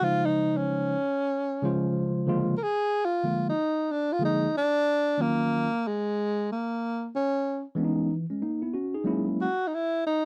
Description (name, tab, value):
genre	hip hop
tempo	93 BPM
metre	4/4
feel	swing 64% on 16ths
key	Eb minor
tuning	A4 = 440 Hz
part	breathy tenor saxophone	melody	0.0-10.2 s	Ab3 to Bb4	-28 LUFS	equal	none
part	tine electric piano	accompaniment	0.0-9.5 s	Db3 to C5	-29 LUFS	equal	none
room	light reverb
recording	dry, close 1970s-style studio recording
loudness	-27 LUFS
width	mono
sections	0.0-5.2 A section; 5.2-10.2 B section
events	tenor saxophone solo 0.0-5.2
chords	0.0 Dbmaj7; 2.6 Bb7; 5.2 Ebm7; 7.8 Dbm7; 9.1 Gb7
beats	| 0.03 0.68 1.32 1.97 | 2.61 3.26 3.90 4.55 | 5.19 5.84 6.48 7.13 | 7.77 8.42 9.06 9.71